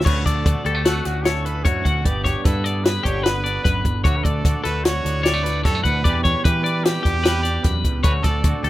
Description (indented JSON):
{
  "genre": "math rock and midwest emo",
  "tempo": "150 BPM",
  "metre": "5/4",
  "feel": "straight",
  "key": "D major",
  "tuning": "A4 = 440 Hz",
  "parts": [
    { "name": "twangy electric guitar", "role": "accompaniment", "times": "0.0-8.7 s", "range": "D2 to G4", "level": "-28 LUFS", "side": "right 5 dB", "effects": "harmonic tremolo" },
    { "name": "twelve-string electric guitar", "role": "arpeggios", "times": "0.0-8.7 s", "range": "F#4 to F#5", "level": "-25 LUFS", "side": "left 6 dB", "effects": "none" },
    { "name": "picked electric bass", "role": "bass", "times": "0.0-8.7 s", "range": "G1 to E3", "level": "-24 LUFS", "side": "equal", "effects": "none" },
    { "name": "compact cocktail drum kit", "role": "drums", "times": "0.0-8.7 s", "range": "crash cymbal, hi-hat, kick drum, snare drum", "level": "-20 LUFS", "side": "equal", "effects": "none" },
    { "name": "clear trumpet", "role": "melody", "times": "0.1-8.7 s", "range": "F#4 to D5", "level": "-27 LUFS", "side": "right 2 dB", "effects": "none" }
  ],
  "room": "small room ambience",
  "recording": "rough home demo mix",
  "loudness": "-17 LUFS",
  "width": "side -15 dB against mid",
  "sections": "0.1-8.7 A section",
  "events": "none",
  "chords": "0.1 Dmaj7; 2.1 G6; 4.1 Dmaj7; 6.0 Em7; 8.0 Dmaj7"
}